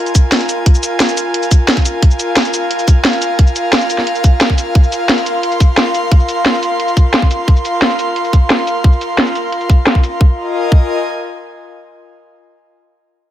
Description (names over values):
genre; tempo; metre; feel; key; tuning
dark technical drum and bass; 176 BPM; 4/4; straight; F minor; A4 = 439 Hz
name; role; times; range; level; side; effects
airy breathy pad; texture; 0.0-11.5 s; F4 to C6; -17 LUFS; equal; chorus, sidechain pumping
drum and bass drum kit; drums; 0.1-10.1 s; cabasa, hi-hat, snare drum; -14 LUFS; equal; low-pass filter on snare, low-pass filter on hats, low-pass filter on perc
electronic kick drum; drums; 0.1-10.8 s; none; -9 LUFS; equal; none
room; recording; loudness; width
light reverb, digital ambience; none; -11 LUFS; side -12 dB against mid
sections
0.0-10.2 A section; 10.2-11.6 B section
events
filter sweep on drum 0.0-10.2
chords
0.0 Fm